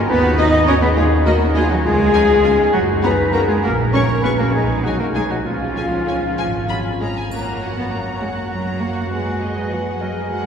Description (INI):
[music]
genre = cinematic, playful, whimsical film cue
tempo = 67 BPM (dotted quarters)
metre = 6/8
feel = straight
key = F# major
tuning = A4 = 440 Hz
[part]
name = warm clarinet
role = second line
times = 0.0-10.5 s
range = C#4 to C#5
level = -27 LUFS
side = equal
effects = none
[part]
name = warm oboe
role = second line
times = 0.0-10.5 s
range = E#4 to D#5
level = -28 LUFS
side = equal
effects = none
[part]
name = warm French horn section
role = sustained chords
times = 0.0-10.5 s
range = E#4 to D#5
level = -21 LUFS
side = left 3 dB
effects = none
[part]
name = clear studio violin section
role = second line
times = 0.1-10.5 s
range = C#4 to C#5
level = -29 LUFS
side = left 2 dB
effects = none
[part]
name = mellow silver concert flute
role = second line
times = 0.1-10.5 s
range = E#5 to D#6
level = -27 LUFS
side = right 1 dB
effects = none
[part]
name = clear studio cello section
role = bass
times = 0.1-10.5 s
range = E#3 to D#4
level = -22 LUFS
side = right 1 dB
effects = none
[part]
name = rich studio double bass section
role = bass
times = 0.1-10.5 s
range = F#1 to F#2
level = -22 LUFS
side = right 1 dB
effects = none
[part]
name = rich studio violin section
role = melody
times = 0.4-10.5 s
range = D#5 to C#6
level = -29 LUFS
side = left 2 dB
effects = none
[part]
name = rich studio viola section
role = accompaniment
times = 0.4-10.5 s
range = B3 to G#4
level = -29 LUFS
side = right 2 dB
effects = none
[part]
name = triangle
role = percussion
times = 7.3-8.5 s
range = none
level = -47 LUFS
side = left 3 dB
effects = none
[sound]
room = wet cathedral reverb, RT60 5.9 s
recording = recorded in a church or concert hall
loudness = -15 LUFS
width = side -7 dB against mid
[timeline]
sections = 0.0-7.3 A section; 7.3-10.5 B section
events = none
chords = 0.1 B/D#; 1.8 C#; 2.7 F#; 3.6 F#/A#; 4.5 G#m/B; 5.5 C#; 7.3 F#; 9.1 G#m7/F#